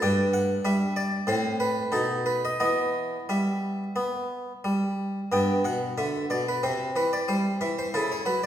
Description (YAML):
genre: classical, baroque-style suite movement for harpsichord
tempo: 91 BPM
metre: 4/4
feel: uneven beats, rubato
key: E minor, G major from 5.3 s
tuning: A4 = 440 Hz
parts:
  - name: harpsichord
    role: solo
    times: 0.0-8.5 s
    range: G2 to G5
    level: -24 LUFS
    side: equal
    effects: none
room: wet recital hall reverb, RT60 1.5 s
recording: heard from further back in the room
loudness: -24 LUFS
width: side -10 dB against mid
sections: 0.0-5.3 A section; 5.3-8.5 A section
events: none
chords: 0.0 G5; 1.3 Amadd9; 1.9 B; 2.6 Em; 5.3 G; 6.6 C; 7.9 A/C#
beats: | 0.01 0.65 1.28 1.94 | 2.62 3.30 3.97 4.65 | 5.32 5.98 6.63 7.28 | 7.93